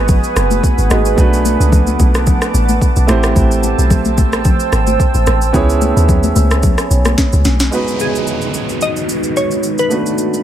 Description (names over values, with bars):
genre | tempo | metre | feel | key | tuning
amapiano | 110 BPM | 4/4 | swing 55% on 16ths | unclear | A4 = 440 Hz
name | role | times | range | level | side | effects
warm concert grand piano | accompaniment | 0.0-10.4 s | G#3 to C#5 | -19 LUFS | right 3 dB | none
deep dark ambient pad | sustained chords | 0.0-10.4 s | G#3 to E6 | -20 LUFS | right 2 dB | chorus, built-in reverb
deep log drum bass | bass | 0.0-7.7 s | F#1 to D#2 | -14 LUFS | equal | none
smooth R&B drum kit | drums | 0.1-10.4 s | kick drum, rim click, shaker, snare drum | -16 LUFS | equal | overdrive
congas | percussion | 0.1-7.6 s | none | -22 LUFS | left 5 dB | none
downlifter | sound effects | 7.7-10.4 s | none | -23 LUFS | right 1 dB | none
glassy wavetable pluck | melody | 8.0-10.4 s | G#4 to D#5 | -20 LUFS | left 1 dB | chorus, tape echo
room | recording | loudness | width
little or no reverb | none | -11 LUFS | side -11 dB against mid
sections
0.0-7.7 A section; 7.7-10.4 B section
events
drop 0.0-7.7; drum fill 7.2-7.7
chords
0.0 G#m7; 1.2 Bm7; 3.1 Am7; 5.5 C#m7; 7.7 G#m7; 9.9 Bm7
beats
0.09 0.63 | 1.18 1.72 2.27 2.81 | 3.36 3.91 4.45 5.00 | 5.54 6.09 6.63 7.18 | 7.72 8.27 8.81 9.36 | 9.91